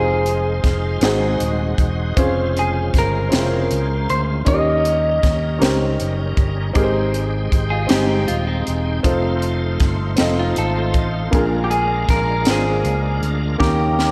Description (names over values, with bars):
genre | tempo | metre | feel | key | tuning
slow gospel | 52 BPM (dotted quarters) | 6/8 | straight | Ab major | A4 = 440 Hz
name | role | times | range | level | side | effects
clean electric guitar | melody | 0.0-6.3, 11.6-14.1 s | G4 to Eb5 | -24 LUFS | equal | phaser, slapback echo
clear concert grand piano | accompaniment | 0.0-14.1 s | Ab2 to Eb5 | -25 LUFS | equal | none
bright tonewheel organ | sustained chords | 0.0-14.1 s | Db3 to G5 | -30 LUFS | equal | fast rotary speaker, overdrive, chorus vibrato
fingered electric bass | bass | 0.0-14.1 s | Eb1 to Eb2 | -24 LUFS | equal | none
crisp fusion drum kit | drums | 0.3-14.1 s | hi-hat, kick drum, snare drum | -23 LUFS | equal | none
clean electric guitar | second line | 7.7-11.3 s | C4 to A4 | -29 LUFS | equal | slapback echo
room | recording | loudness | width
moderate lush hall reverb, RT60 2.5 s | big arena sound | -19 LUFS | mono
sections
0.0-14.1 A section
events
drum fill 13.6-14.1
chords
0.0 Fm7; 1.0 Ab7; 2.2 Dbmaj7/F; 4.5 Eb7; 6.8 Abmaj7; 9.0 F7; 11.3 Bb7; 13.6 Eb7